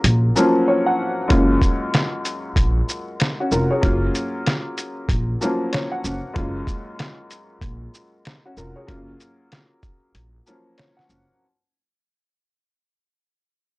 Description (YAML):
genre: hip hop, boom-bap hip-hop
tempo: 95 BPM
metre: 4/4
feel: swing 63% on 16ths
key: F# major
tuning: A4 = 438 Hz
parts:
  - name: warm upright piano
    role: accompaniment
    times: 0.0-11.4 s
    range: F#2 to F#5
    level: -22 LUFS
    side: left 1 dB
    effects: high-pass filter, low-pass filter
  - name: upright bass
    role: bass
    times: 0.0-11.2 s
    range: E#1 to A#1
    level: -21 LUFS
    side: equal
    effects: tube saturation
  - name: lo-fi sampler-style drum kit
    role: drums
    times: 0.0-11.3 s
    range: hi-hat, kick drum, shaker, snare drum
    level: -21 LUFS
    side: equal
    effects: none
room: light reverb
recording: dry, gritty hardware recording, cassette tape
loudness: -18 LUFS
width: side -22 dB against mid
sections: 0.0-11.4 A section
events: break 0.0-1.3, 10.1-11.4; fade-out 0.0-11.4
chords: 0.0 F#maj7; 8.9 F#maj9